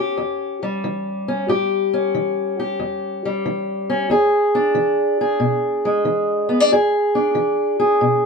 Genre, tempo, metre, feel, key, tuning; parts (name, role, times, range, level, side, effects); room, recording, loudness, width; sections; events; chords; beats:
blues; 92 BPM; 4/4; swing 68% on 8ths; A4 = 440 Hz
fingerpicked steel-string acoustic guitar; solo; 0.0-8.3 s; E2 to G#4; -17 LUFS; equal
moderate studio ambience, RT60 0.5 s; minimal, uncompressed stereo recording; -17 LUFS; side -4 dB against mid
0.0-8.3 A section
0.0 A7; 4.1 E7
0.18 0.83 | 1.48 2.14 2.79 3.44 | 4.09 4.75 5.40 6.05 | 6.70 7.35 8.01